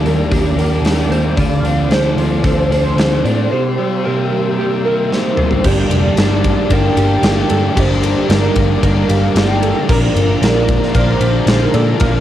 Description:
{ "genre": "rock, shoegaze and dream pop", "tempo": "113 BPM", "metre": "4/4", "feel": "straight", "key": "G minor", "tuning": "A4 = 439 Hz", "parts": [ { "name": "warm analog pad", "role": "sustained chords", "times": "0.0-12.2 s", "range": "F4 to E6", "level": "-27 LUFS", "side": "equal", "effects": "chorus, cassette tape" }, { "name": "direct-recorded clean electric guitar", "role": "arpeggios", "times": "0.0-12.2 s", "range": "G4 to D5", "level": "-22 LUFS", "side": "right 5 dB", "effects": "ensemble chorus, cassette tape, analog delay" }, { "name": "biting overdriven guitar", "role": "riff", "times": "0.0-12.2 s", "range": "G2 to D4", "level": "-20 LUFS", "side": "left 8 dB", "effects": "lush chorus, cassette tape" }, { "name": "overdriven semi-hollow guitar", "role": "riff", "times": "0.0-12.2 s", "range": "G2 to A4", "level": "-21 LUFS", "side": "right 7 dB", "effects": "reverse reverb, cassette tape" }, { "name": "vintage muted picked electric bass", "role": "bass", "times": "0.0-12.2 s", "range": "F1 to Bb2", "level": "-16 LUFS", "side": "equal", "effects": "none" }, { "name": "huge arena drum kit", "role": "drums", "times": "0.1-12.1 s", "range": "crash cymbal, hi-hat, kick drum, ride cymbal, snare drum, toms", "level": "-18 LUFS", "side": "equal", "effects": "cassette tape" }, { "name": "warm velvety synth lead", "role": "melody", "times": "1.4-12.2 s", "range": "G4 to G5", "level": "-22 LUFS", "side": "equal", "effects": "chorus, cassette tape, analog delay" } ], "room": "small room ambience", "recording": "home recording on cassette", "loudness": "-12 LUFS", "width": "side -12 dB against mid", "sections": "0.0-5.6 A section; 5.6-12.2 B section", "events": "drum fill 5.1-5.6", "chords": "0.0 Ebmaj7; 1.4 Dm7; 3.5 C7; 5.6 Gmadd9; 9.9 Bb", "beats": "0.31 0.84 | 1.38 1.91 2.44 2.98 | 3.51 4.04 4.58 5.11 | 5.64 6.18 6.71 7.24 | 7.77 8.30 8.84 9.37 | 9.90 10.43 10.96 11.49 | 12.02" }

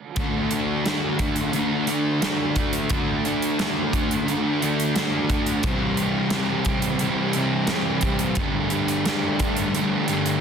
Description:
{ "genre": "rock, shoegaze and dream pop", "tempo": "88 BPM", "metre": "4/4", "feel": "straight", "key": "D mixolydian", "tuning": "A4 = 444 Hz", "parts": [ { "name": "overdriven semi-hollow guitar", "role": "riff", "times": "0.2-10.4 s", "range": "C3 to G4", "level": "-25 LUFS", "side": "right 9 dB", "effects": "reverse reverb" }, { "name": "thick fuzz guitar", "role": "riff", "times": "0.2-10.4 s", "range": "G2 to D4", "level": "-25 LUFS", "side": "left 8 dB", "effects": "distortion, wide subtle chorus" }, { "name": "big rock drum kit", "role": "drums", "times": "0.2-10.4 s", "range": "hi-hat, kick drum, snare drum", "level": "-27 LUFS", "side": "right 1 dB", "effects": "soft clipping on kick" } ], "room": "light reverb, studio reverb", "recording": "dense, heavily limited modern master", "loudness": "-20 LUFS", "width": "side -7 dB against mid", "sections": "0.2-10.4 A section", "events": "none", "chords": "0.2 D; 5.6 C; 8.4 Gsus2", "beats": "| 0.16 0.85 1.53 2.22 | 2.90 3.59 4.27 4.96 | 5.64 6.33 7.01 7.70 | 8.38 9.06 9.75" }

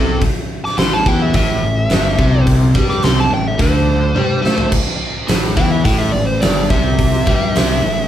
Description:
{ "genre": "blues rock power trio and southern rock", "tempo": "106 BPM", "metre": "4/4", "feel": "straight", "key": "A minor", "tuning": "A4 = 435 Hz", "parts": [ { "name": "fuzz lead guitar", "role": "melody", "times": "0.0-8.1 s", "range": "A4 to D6", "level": "-20 LUFS", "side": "equal", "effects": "distortion" }, { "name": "crunchy overdriven guitar", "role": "riff", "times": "0.0-8.1 s", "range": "G2 to A3", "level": "-18 LUFS", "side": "left 1 dB", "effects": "none" }, { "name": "fuzz fingered electric bass", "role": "bass", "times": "0.0-8.1 s", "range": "G1 to A2", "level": "-19 LUFS", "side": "equal", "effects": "overdrive" }, { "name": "big rock drum kit", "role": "drums", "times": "0.2-7.7 s", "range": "crash cymbal, hi-hat, kick drum, snare drum, toms", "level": "-17 LUFS", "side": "equal", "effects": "none" } ], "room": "moderate large studio reverb, RT60 0.8 s", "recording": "band playing live in one room", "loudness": "-12 LUFS", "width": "side -11 dB against mid", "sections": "0.0-4.7 A section; 4.7-8.1 B section", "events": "drum fill 4.2-4.7; lead electric guitar solo 4.7-8.1", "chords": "0.0 Am", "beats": "| 0.22 0.78 1.34 1.91 | 2.47 3.03 3.60 4.16 | 4.72 5.29 5.86 6.42 | 6.99 7.55" }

